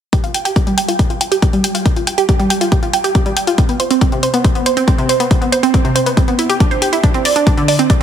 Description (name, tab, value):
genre	uplifting trance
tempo	139 BPM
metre	4/4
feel	straight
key	unclear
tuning	A4 = 439 Hz
part	analog pluck	arpeggios	0.1-8.0 s	C3 to G5	-15 LUFS	right 3 dB	chorus, sidechain pumping, ping-pong delay
part	electronic hi-hat	drums	0.1-8.0 s	none	-21 LUFS	left 4 dB	overdrive
part	electronic kick drum	drums	0.1-8.0 s	none	-13 LUFS	left 1 dB	none
room	moderate lush hall reverb, RT60 2.3 s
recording	heavily compressed radio sound, multiband compression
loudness	-12 LUFS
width	side -9 dB against mid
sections	0.1-8.0 A section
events	filter sweep on synth pluck 0.1-8.0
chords	none